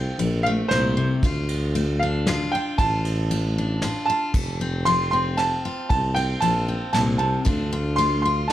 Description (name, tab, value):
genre	honky-tonk and classic country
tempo	115 BPM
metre	3/4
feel	straight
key	unclear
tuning	A4 = 439 Hz
part	clear upright piano	melody	0.0-8.5 s	C5 to C6	-24 LUFS	right 2 dB	none
part	picked steel-string acoustic guitar	accompaniment	0.0-8.5 s	F2 to F4	-27 LUFS	left 2 dB	none
part	mellow tuba	bass	0.0-8.5 s	F1 to D2	-25 LUFS	equal	none
part	soft brush drum kit	drums	0.2-8.5 s	crash cymbal, kick drum, ride cymbal, rim click, snare drum	-29 LUFS	equal	none
room	light reverb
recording	none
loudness	-20 LUFS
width	side -13 dB against mid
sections	0.0-4.3 A section; 4.3-8.5 B section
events	none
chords	0.0 F; 1.2 Dm; 4.3 F; 7.5 Dm